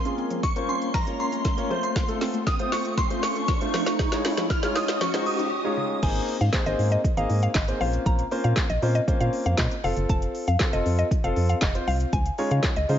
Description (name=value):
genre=dance-pop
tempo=118 BPM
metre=4/4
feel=straight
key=Bb minor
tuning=A4 = 440 Hz
part: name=shimmering bell with halo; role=melody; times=0.0-5.9 s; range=Bb5 to F6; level=-29 LUFS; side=equal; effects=ensemble chorus, ping-pong delay
part: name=ethereal airy pad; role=sustained chords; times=0.0-6.0 s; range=A3 to Eb5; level=-34 LUFS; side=left 1 dB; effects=ensemble chorus, built-in reverb, sidechain pumping
part: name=riser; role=sound effects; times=0.6-5.5 s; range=none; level=-32 LUFS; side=right 1 dB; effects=none
part: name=warm concert grand piano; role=accompaniment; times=0.1-13.0 s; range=Ab3 to Eb5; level=-29 LUFS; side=left 1 dB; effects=sidechain pumping
part: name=mallet-like synth pluck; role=arpeggios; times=0.1-5.9 s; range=Db3 to F5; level=-35 LUFS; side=left 1 dB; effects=chorus, sidechain pumping, ping-pong delay
part: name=deep house drum kit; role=drums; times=0.1-13.0 s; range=crash cymbal, handclaps, hi-hat, kick drum, shaker, snare drum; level=-26 LUFS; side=equal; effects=none
part: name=mallet-like synth pluck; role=melody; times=6.0-12.9 s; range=Eb5 to Bb5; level=-30 LUFS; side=left 1 dB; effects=chorus, sidechain pumping, ping-pong delay
part: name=organ-like FM bass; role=bass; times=6.0-13.0 s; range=F1 to Db3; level=-24 LUFS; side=equal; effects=sidechain pumping
room=light reverb, digital ambience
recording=nothing above 7.6 kHz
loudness=-22 LUFS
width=side -10 dB against mid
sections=0.0-6.0 A section; 6.0-13.0 B section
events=build-up 0.0-6.0; drum fill 0.0-5.5; riser 0.6-6.0; drop 6.0-13.0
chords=0.0 Bbmadd9; 1.7 F; 4.0 Dbadd9; 6.0 Abadd9; 7.8 Bbmadd9; 9.8 F; 12.1 Dbadd9